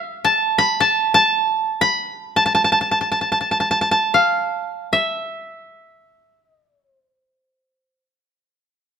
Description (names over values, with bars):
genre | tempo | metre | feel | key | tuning
japanese traditional | free time | none | none | unclear | A4 = 439 Hz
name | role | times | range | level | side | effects
koto | solo | 0.0-8.0 s | E5 to B5 | -16 LUFS | equal | none
room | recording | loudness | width
light reverb | close, detailed microphones | -16 LUFS | side -8 dB against mid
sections
0.0-9.0 A section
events
none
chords
none